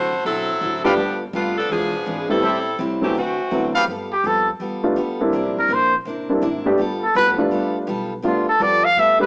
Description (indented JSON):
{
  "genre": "jazz",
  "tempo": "165 BPM",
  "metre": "4/4",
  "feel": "swing 63% on 8ths",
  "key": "G mixolydian",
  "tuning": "A4 = 440 Hz",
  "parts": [
    { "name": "edgy saxophone section", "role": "melody", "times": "0.0-3.7 s", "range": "E3 to C5", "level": "-21 LUFS", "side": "equal", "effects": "none" },
    { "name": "picked steel-string acoustic guitar", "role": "accompaniment", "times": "0.0-9.2 s", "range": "A2 to B4", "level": "-26 LUFS", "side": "equal", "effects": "cassette tape" },
    { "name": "upright bass", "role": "bass", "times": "0.0-9.3 s", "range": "E1 to A2", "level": "-34 LUFS", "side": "equal", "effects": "none" },
    { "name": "warm baby grand piano", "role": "accompaniment", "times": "0.8-9.3 s", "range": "F#3 to G4", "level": "-20 LUFS", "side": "equal", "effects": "cassette tape, plate reverb" },
    { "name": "clear trumpet section", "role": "stabs", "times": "0.8-3.8 s", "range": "G4 to F5", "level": "-21 LUFS", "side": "equal", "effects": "cassette tape, plate reverb" },
    { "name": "warm trumpet", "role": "melody", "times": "4.1-9.3 s", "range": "F4 to F5", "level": "-16 LUFS", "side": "equal", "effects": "none" }
  ],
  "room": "moderate studio reverb, RT60 0.6 s",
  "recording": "home recording on cassette, small speaker sound",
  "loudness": "-17 LUFS",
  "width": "side -38 dB against mid",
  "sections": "0.0-3.9 A section; 3.9-9.3 B section",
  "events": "trumpet solo 3.9-9.3",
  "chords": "0.0 D9; 1.0 G9; 1.7 E7b9; 2.4 Am7; 3.2 D13; 3.9 G9; 5.3 C9; 6.8 G9"
}